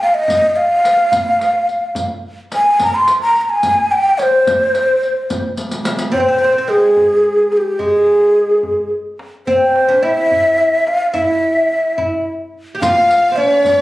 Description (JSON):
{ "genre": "Persian modal ensemble", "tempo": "72 BPM (dotted quarters)", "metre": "6/8", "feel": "straight", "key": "C dastgah shur", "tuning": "A4 = 440 Hz", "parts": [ { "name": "breathy mellow ney", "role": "melody", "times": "0.0-13.8 s", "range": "G4 to C6", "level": "-12 LUFS", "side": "equal", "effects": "none" }, { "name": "riq", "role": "percussion", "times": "0.0-6.1, 12.8-13.8 s", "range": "none", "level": "-24 LUFS", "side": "equal", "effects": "none" }, { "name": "tombak", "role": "percussion", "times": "0.0-13.8 s", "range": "none", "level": "-31 LUFS", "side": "equal", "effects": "none" }, { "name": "oud", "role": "second line", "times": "6.1-13.8 s", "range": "Ab3 to G4", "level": "-21 LUFS", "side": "right 2 dB", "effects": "none" }, { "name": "bright symphonic violin section", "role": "second line", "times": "12.8-13.8 s", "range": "D5-50c to F5", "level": "-26 LUFS", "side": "equal", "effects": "none" } ], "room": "moderate recital hall reverb, RT60 1.3 s", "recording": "recorded on a phone in the room, club reverb, compression", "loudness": "-12 LUFS", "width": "side -16 dB against mid", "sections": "0.0-6.1 A section; 6.1-13.8 B section", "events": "drum fill 5.6-6.1", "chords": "none" }